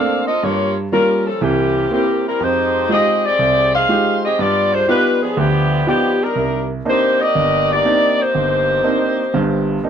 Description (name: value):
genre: jazz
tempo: 121 BPM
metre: 4/4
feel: swing 68% on 8ths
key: C minor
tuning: A4 = 442 Hz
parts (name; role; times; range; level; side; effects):
- dark saxophone section; melody; 0.0-9.8 s; E3 to F5; -16 LUFS; left 1 dB; none
- clear concert grand piano; accompaniment; 0.0-9.9 s; G1 to G4; -19 LUFS; right 2 dB; none
room: moderate club reverb, RT60 0.6 s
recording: none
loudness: -14 LUFS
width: side -8 dB against mid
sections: 0.0-9.9 A section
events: none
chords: 0.4 Gm7b5; 1.4 C7; 2.4 Fm9; 4.4 G7b13; 6.4 Cm9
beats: | 0.42 0.91 1.41 1.90 | 2.40 2.89 3.39 3.88 | 4.38 4.87 5.37 5.86 | 6.36 6.86 7.35 7.85 | 8.34 8.84 9.33 9.83